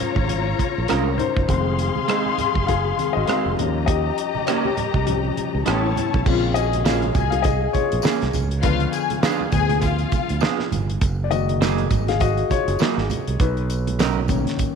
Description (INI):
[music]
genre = lush 1970s-style soul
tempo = 101 BPM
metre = 4/4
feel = swing 58% on 16ths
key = unclear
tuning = A4 = 440 Hz
[part]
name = warm studio string section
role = second line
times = 0.0-10.7 s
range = E4 to C6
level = -25 LUFS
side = left 8 dB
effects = none
[part]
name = warm baby grand piano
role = accompaniment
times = 0.0-14.8 s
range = Db3 to F5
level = -25 LUFS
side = left 8 dB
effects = none
[part]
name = fingered electric bass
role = bass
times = 0.0-14.4 s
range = F1 to Eb2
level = -24 LUFS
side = right 2 dB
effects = none
[part]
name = damped 70s drum kit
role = drums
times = 0.2-14.8 s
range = crash cymbal, hi-hat, kick drum, rim click, snare drum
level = -24 LUFS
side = right 2 dB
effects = none
[part]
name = congas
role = percussion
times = 0.2-14.7 s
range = none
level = -31 LUFS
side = right 11 dB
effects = none
[part]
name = electric guitar through a small old amp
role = riff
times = 0.9-14.2 s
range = Eb3 to Bb4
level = -27 LUFS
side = right 13 dB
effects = spring reverb
[part]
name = tambourine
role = percussion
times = 6.3-14.8 s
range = none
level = -42 LUFS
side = left 10 dB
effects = none
[sound]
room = moderate echo chamber reverb, RT60 2.3 s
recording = 1960s-style stereo with parts hard left and right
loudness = -18 LUFS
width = side -6 dB against mid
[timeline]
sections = 0.0-6.3 A section; 6.3-14.8 B section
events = grand piano solo 0.0-6.3, 6.3-14.8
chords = 0.0 Bbm7; 1.5 Fm7; 3.6 Eb7; 5.7 A9; 6.3 Bbm7; 8.3 Db7b9; 11.0 Gb69; 13.4 Cbmaj9